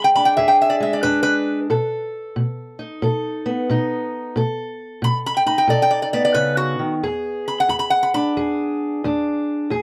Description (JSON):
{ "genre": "acoustic country blues, solo or duo", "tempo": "90 BPM", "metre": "4/4", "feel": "swing 66% on 8ths", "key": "E mixolydian", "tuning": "A4 = 440 Hz", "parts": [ { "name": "lap resonator guitar", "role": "melody", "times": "0.0-8.5 s", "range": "F#4 to B5", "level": "-20 LUFS", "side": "equal", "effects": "none" }, { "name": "fingerpicked steel-string acoustic guitar", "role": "accompaniment", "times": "0.0-9.8 s", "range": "E2 to A4", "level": "-24 LUFS", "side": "equal", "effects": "none" } ], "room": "light reverb", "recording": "close, detailed microphones", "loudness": "-20 LUFS", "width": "mono", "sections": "0.0-9.8 A section", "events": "resonator guitar played with a steel bar solo 0.0-9.8", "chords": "0.0 E7; 1.7 B7; 7.0 E7" }